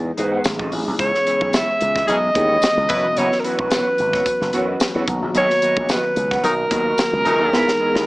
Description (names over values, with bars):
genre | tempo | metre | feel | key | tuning
polished 1980s jazz-funk pop | 110 BPM | 4/4 | swing 54% on 16ths | unclear | A4 = 440 Hz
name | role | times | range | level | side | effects
mellow tine electric piano | accompaniment | 0.0-8.1 s | D#3 to A#5 | -27 LUFS | left 1 dB | medium stereo tremolo, analog chorus
slap bass with an envelope filter | bass | 0.0-8.1 s | E1 to G#2 | -24 LUFS | equal | none
mellow electric guitar | riff | 0.1-8.1 s | B3 to F#5 | -27 LUFS | right 2 dB | lush chorus
crisp fusion drum kit | drums | 0.2-8.1 s | hi-hat, kick drum, snare drum | -24 LUFS | equal | none
tambourine | percussion | 0.4-7.1 s | none | -33 LUFS | left 2 dB | none
breathy alto saxophone | melody | 1.0-8.1 s | A#4 to E5 | -18 LUFS | equal | none
warm horn section | second line | 2.1-3.1, 6.4-7.6 s | E3 to B4 | -22 LUFS | left 1 dB | none
room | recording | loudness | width
light reverb, small room ambience | small speaker sound | -16 LUFS | side -21 dB against mid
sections
0.0-8.1 A section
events
tine electric piano fill 4.5-5.3; drum fill 7.5-8.1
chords
0.4 G#7b9; 1.0 C#m7; 2.9 F#7sus4; 5.1 Bmaj7; 7.5 Emaj7